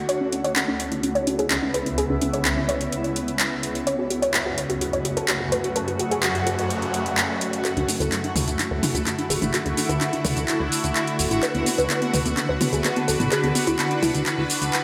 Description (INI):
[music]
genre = progressive house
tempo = 127 BPM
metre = 4/4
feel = straight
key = unclear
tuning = A4 = 442 Hz
[part]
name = shimmering ambient pad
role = sustained chords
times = 0.0-14.8 s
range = C#2 to B4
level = -28 LUFS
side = equal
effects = chorus, built-in reverb, phaser
[part]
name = soft round pluck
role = arpeggios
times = 0.1-14.8 s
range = B3 to C#5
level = -28 LUFS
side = equal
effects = ensemble chorus, diffuse ambient delay
[part]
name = deep house drum kit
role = drums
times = 0.1-14.8 s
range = handclaps, hi-hat, shaker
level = -28 LUFS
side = equal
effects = overdrive
[part]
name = noise sweep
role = sound effects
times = 6.2-7.6 s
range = none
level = -35 LUFS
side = equal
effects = none
[part]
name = plucky analog bass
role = bass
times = 7.8-14.7 s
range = D1 to D2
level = -31 LUFS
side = equal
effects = none
[part]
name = electronic congas and toms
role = percussion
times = 8.0-14.1 s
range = none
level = -33 LUFS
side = equal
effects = none
[sound]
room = wet lush hall reverb, RT60 2.1 s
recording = dreamy mix soaked in reverb, high-pass filter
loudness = -23 LUFS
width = mono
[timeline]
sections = 0.0-7.6 A section; 7.6-14.8 B section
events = filter sweep on synth pluck 0.0-7.6, 7.6-14.8; filter sweep on ambient pad 0.0-7.6; noise sweep 6.2-7.6; build-up 7.6-14.8; drum fill 7.6-14.8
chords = 0.1 C#m7; 3.9 F#m; 7.6 Dadd9; 11.4 Bm/D